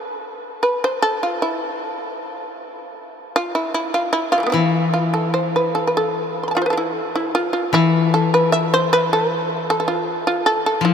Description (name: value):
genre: japanese traditional, Japanese chamber music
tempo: 77 BPM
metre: 2/4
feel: rubato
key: E miyako bushi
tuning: A4 = 440 Hz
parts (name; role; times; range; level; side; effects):
- shamisen; melody; 0.6-10.9 s; C3 to C6; -18 LUFS; right 1 dB; none
- koto; accompaniment; 4.5-10.9 s; E3 to F3; -21 LUFS; left 5 dB; none
room: wet huge ambient reverb, RT60 8.6 s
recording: in a vast, echoing space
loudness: -17 LUFS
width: side -7 dB against mid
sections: 0.0-6.2 A section; 6.2-10.9 B section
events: none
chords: none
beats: 0.64 | 1.42 2.20 | 2.99 3.77 | 4.55 5.35 | 6.16 6.96 | 7.74 8.52 | 9.29 10.06 | 10.83